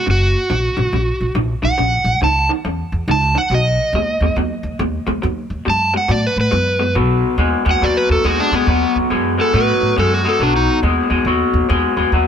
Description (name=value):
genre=electric blues shuffle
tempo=139 BPM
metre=4/4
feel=swing 64% on 8ths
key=B mixolydian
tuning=A4 = 440 Hz
part: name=overdriven slide guitar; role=melody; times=0.0-10.8 s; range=B3 to A5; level=-18 LUFS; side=right 1 dB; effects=none
part: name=electric guitar through a small old amp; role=riff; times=0.0-12.3 s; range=F#2 to G#3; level=-18 LUFS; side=left 2 dB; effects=wide subtle chorus
part: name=upright bass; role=bass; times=0.1-12.3 s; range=F#1 to A2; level=-19 LUFS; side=equal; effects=none
room=light reverb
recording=none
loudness=-14 LUFS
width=side -8 dB against mid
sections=0.0-7.0 A section; 7.0-12.3 B section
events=electric slide guitar solo 7.0-12.3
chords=0.1 F#; 3.5 B